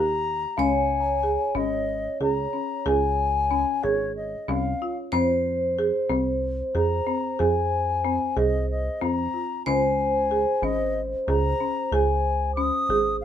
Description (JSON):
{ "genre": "contemporary instrumental, chamber music in an uneven meter", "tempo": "185 BPM (eighths)", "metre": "7/8", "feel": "straight", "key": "Db major", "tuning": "A4 = 440 Hz", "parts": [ { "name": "baroque flute", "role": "melody", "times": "0.0-13.2 s", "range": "Db5 to Eb6", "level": "-26 LUFS", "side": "left 5 dB", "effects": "none" }, { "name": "vibraphone with medium hard mallets", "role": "second line", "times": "0.0-13.2 s", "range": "G4 to Db5", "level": "-29 LUFS", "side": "right 1 dB", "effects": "none" }, { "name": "folk marimba with medium mallets", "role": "arpeggios", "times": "0.0-13.2 s", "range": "C4 to Ab4", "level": "-27 LUFS", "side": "right 2 dB", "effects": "none" }, { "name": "plucky analog bass", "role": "bass", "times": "0.0-13.2 s", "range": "Ab1 to F2", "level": "-28 LUFS", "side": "equal", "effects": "none" }, { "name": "small celesta", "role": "texture", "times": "0.6-2.0, 10.9-11.9 s", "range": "Eb5 to Bb5", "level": "-36 LUFS", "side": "left 5 dB", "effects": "none" } ], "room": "light reverb", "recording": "minimal, uncompressed stereo recording", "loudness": "-22 LUFS", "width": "side -9 dB against mid", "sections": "0.6-13.2 A section", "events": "none", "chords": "0.0 Eb; 0.6 Dbadd9; 5.1 Fm; 9.7 Dbsus2" }